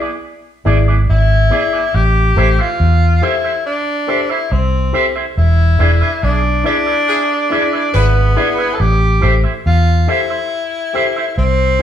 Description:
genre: reggae.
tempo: 70 BPM.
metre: 4/4.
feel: straight.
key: A minor.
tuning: A4 = 440 Hz.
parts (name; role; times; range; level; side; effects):
electric guitar with an envelope filter; accompaniment; 0.0-11.8 s; B3 to E5; -20 LUFS; right 3 dB; harmonic tremolo.
warm upright piano; stabs; 0.7-11.8 s; E4 to D5; -22 LUFS; left 5 dB; none.
vintage muted fingered electric bass; bass; 0.7-11.8 s; E1 to E2; -13 LUFS; equal; none.
clear tenor saxophone; melody; 1.1-11.8 s; B3 to A4; -17 LUFS; left 1 dB; none.
clear horn section; second line; 6.2-8.8 s; D4 to B4; -21 LUFS; left 1 dB; none.
room: moderate large studio reverb, RT60 1.1 s.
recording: band playing live in one room.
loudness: -12 LUFS.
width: side -10 dB against mid.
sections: 0.0-11.8 A section.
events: band accent 5.4-8.8.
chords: 0.0 E7; 1.9 Am7; 5.4 E7; 8.8 Am7.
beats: 0.22 1.08 | 1.94 2.79 3.65 4.51 | 5.36 6.22 7.08 7.93 | 8.79 9.65 10.51 11.37.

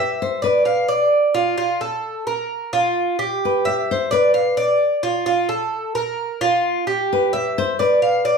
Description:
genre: latin.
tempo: 130 BPM.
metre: 4/4.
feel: straight.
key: unclear.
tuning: A4 = 440 Hz.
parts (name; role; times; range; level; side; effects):
nylon-string guitar; melody; 0.0-8.4 s; G4 to C5; -20 LUFS; left 2 dB; none.
Cuban tres; arpeggios; 0.0-8.4 s; F4 to F5; -18 LUFS; right 1 dB; none.
room: moderate large studio reverb, RT60 0.9 s.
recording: band playing live in one room.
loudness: -17 LUFS.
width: side -5 dB against mid.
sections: 0.0-8.4 A section.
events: nylon-string guitar solo 0.0-8.4.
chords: 0.0 G6; 0.7 Bdim; 1.6 F; 2.5 Bb5; 3.4 G6; 4.3 Bdim; 5.3 F; 6.2 Bb5; 7.1 G6.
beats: 0.19 0.65 1.11 | 1.57 2.04 2.50 2.96 | 3.42 3.88 4.34 4.80 | 5.26 5.72 6.18 6.64 | 7.10 7.56 8.02.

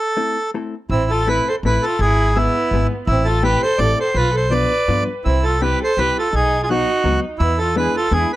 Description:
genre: musette waltz.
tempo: 166 BPM.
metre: 3/4.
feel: swing 53% on 8ths, rubato.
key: A minor.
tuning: A4 = 440 Hz.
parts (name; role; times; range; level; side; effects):
accordion; melody; 0.0-8.4 s; E4 to D5; -19 LUFS; right 1 dB; none.
hollow-body jazz guitar; accompaniment; 0.2-8.3 s; F3 to A4; -24 LUFS; left 4 dB; none.
dark violin; second line; 0.9-8.3 s; B3 to B4; -23 LUFS; right 2 dB; tape echo.
upright bass; bass; 0.9-8.2 s; G#1 to G2; -20 LUFS; equal; none.
room: light reverb, studio ambience.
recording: dry, gritty hardware recording.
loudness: -15 LUFS.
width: side -15 dB against mid.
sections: 0.9-8.4 A section.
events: break 0.0-0.9.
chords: 0.0 Am; 2.0 E/G#; 3.1 Am7; 4.2 Bdim; 5.2 C; 6.3 B; 7.4 E7.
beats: 0.17 0.54 | 0.91 1.28 1.64 | 2.00 2.36 2.72 | 3.08 3.44 3.80 | 4.16 4.52 4.88 | 5.25 5.61 5.97 | 6.33 6.69 7.04 | 7.40 7.75 8.11.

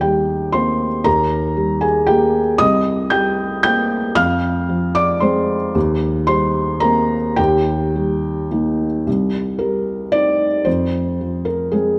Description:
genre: neoclassical minimalist piano.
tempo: 114 BPM.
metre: 3/4.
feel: rubato.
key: C minor.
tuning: A4 = 440 Hz.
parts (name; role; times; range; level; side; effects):
felt-muted upright piano; solo; 0.0-12.0 s; C2 to G6; -18 LUFS; equal; none.
room: moderate concert hall reverb, RT60 2.1 s.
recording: none.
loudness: -18 LUFS.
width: mono.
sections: 0.0-9.1 A section; 9.1-12.0 B section.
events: none.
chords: 0.0 Cm7/Eb; 1.1 Eb; 2.6 Cm7; 4.2 Fm; 5.8 Cm7/Eb; 7.4 Eb; 9.1 Cm7; 10.7 Fm.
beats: 0.02 0.54 | 1.06 1.57 2.09 | 2.61 3.12 3.64 | 4.17 4.69 5.22 | 5.75 6.28 6.82 | 7.38 7.95 8.51 | 9.06 9.60 10.13 | 10.66 11.20 11.72.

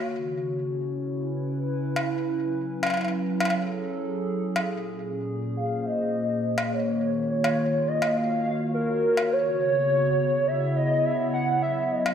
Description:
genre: IDM.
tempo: 104 BPM.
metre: 4/4.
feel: straight.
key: unclear.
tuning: A4 = 439 Hz.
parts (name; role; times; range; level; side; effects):
warbly tape-like pad; sustained chords; 0.0-12.1 s; Bb2 to Db5; -27 LUFS; equal; chorus, built-in reverb, vintage 12-bit sampler grit.
cowbell; drums; 2.0-12.1 s; none; -29 LUFS; left 1 dB; overdrive.
warbly nostalgic lead; melody; 5.6-12.1 s; Bb4 to Gb5; -25 LUFS; right 1 dB; ensemble chorus, slapback echo, digital delay.
room: wet scoring stage reverb, RT60 1.7 s, digital ambience.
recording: big arena sound.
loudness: -23 LUFS.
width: side -8 dB against mid.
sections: 0.0-12.1 A section.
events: filter sweep on ambient pad 0.0-12.1.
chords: 0.1 Dbm7; 2.4 Gbm9; 4.7 Bbm9; 6.7 Ebm9; 9.3 Dbm7; 11.6 Gb7(no3).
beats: | 0.09 0.67 1.24 1.82 | 2.40 2.97 3.55 4.13 | 4.70 5.28 5.86 6.43 | 7.01 7.59 8.16 8.74 | 9.32 9.90 10.47 11.05 | 11.63.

